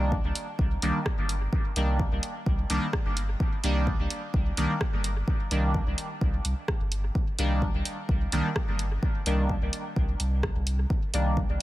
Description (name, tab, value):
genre	dub techno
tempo	128 BPM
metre	4/4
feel	straight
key	C minor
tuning	A4 = 440 Hz
part	resonant sweep polysynth	stabs	0.0-11.4 s	Eb3 to D4	-31 LUFS	equal	chorus, phaser, sidechain pumping, dub echo
part	warm sub bass	bass	0.0-11.6 s	G1 to C2	-28 LUFS	equal	sidechain pumping
part	electronic kick drum	drums	0.1-11.5 s	none	-28 LUFS	equal	none
part	punchy analog drum machine	drums	0.4-11.2 s	hi-hat, rim click	-34 LUFS	right 1 dB	dub echo
room	digital ambience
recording	none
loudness	-25 LUFS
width	side -16 dB against mid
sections	0.0-11.6 A section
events	none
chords	0.0 Cm9